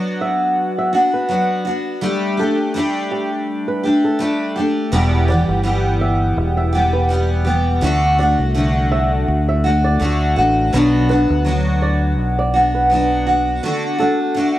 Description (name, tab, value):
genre	pop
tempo	83 BPM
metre	4/4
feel	swing 55% on 16ths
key	unclear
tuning	A4 = 440 Hz
part	picked steel-string acoustic guitar	accompaniment	0.0-14.6 s	E2 to G4	-16 LUFS	equal	double-tracked left and right
part	flamenco guitar	arpeggios	0.2-14.2 s	G4 to E5	-26 LUFS	right 4 dB	none
part	fingered electric bass	bass	4.9-13.6 s	E1 to D2	-18 LUFS	equal	none
room	moderate studio reverb, RT60 0.5 s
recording	home recording on cassette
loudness	-15 LUFS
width	side -14 dB against mid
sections	0.0-14.6 A section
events	none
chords	0.0 Bm; 2.0 Gsus2; 4.9 Em; 7.8 D; 10.7 Bm; 13.6 D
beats	0.58 1.30 | 2.03 2.75 3.48 4.20 | 4.93 5.66 6.38 7.11 | 7.83 8.56 9.28 10.01 | 10.73 11.46 12.18 12.91 | 13.63 14.36